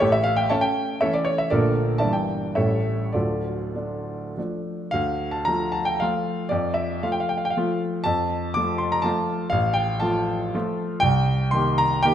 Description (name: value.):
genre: classical, romantic triple-time dance for piano with dotted rhythms.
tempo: 94-128 BPM.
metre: 3/4.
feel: rubato.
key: D minor.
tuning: A4 = 440 Hz.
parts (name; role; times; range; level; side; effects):
warm grand piano; solo; 0.0-12.1 s; D1 to D6; -21 LUFS; equal; none.
room: moderate scoring stage reverb, RT60 1.6 s.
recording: none.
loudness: -21 LUFS.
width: side -10 dB against mid.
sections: 0.0-4.9 A section; 4.9-12.1 B section.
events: none.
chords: 0.0 A7; 1.5 Bbmaj7; 2.0 Em7b5/G; 2.6 A7; 3.1 Dm; 6.5 F; 9.5 F/A; 11.0 Cm7.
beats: | 0.01 0.51 1.03 | 1.51 2.02 2.57 | 3.15 3.75 4.37 | 4.93 5.47 6.00 | 6.50 7.03 7.56 | 8.05 8.54 9.05 | 9.53 10.03 10.54 | 11.03 11.53 12.03.